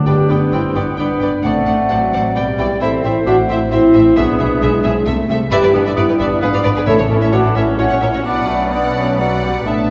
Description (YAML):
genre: quick classical-period movement for symphony orchestra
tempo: 131 BPM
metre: 3/4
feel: rubato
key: G major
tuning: A4 = 442 Hz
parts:
  - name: dark cor anglais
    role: second line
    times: 0.0-9.9 s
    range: F#3 to E4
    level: -25 LUFS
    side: equal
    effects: none
  - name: muted chamber viola section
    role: accompaniment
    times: 0.0-9.9 s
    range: E3 to C#4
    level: -26 LUFS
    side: equal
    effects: none
  - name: timpani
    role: percussion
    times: 0.0-2.1, 6.9-7.5 s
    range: A2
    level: -23 LUFS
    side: equal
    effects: none
  - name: muted chamber violin section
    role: melody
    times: 0.1-9.9 s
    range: A4 to A5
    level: -29 LUFS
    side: equal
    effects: none
  - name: mellow concert flute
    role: second line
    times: 0.1-9.9 s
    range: E5 to A5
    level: -26 LUFS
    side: equal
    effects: none
  - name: muted symphonic violin section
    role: second line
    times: 0.1-9.9 s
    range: E4 to E5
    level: -28 LUFS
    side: equal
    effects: none
  - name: warm clarinet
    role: second line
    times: 0.1-9.9 s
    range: G#4 to E5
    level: -26 LUFS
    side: equal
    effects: none
  - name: dark French horn section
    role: sustained chords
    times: 0.1-9.9 s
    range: B3 to A4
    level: -19 LUFS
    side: equal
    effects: none
  - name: muted chamber cello section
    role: bass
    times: 0.1-9.9 s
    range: G2 to C3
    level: -25 LUFS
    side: equal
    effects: none
  - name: muted studio double bass section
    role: bass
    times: 0.1-9.9 s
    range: G1 to C2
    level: -26 LUFS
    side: equal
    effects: none
room: wet recital hall reverb, RT60 1.8 s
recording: recorded in a church or concert hall, nothing above 7.7 kHz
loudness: -15 LUFS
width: mono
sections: 0.1-9.9 A section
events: none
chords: 0.1 G; 1.4 D7/A; 2.4 G/B; 2.8 Am; 4.2 E7/B; 5.1 Am; 5.5 Em7/G; 6.4 G#dim7; 6.9 A; 7.8 F#7/A#; 8.3 Bm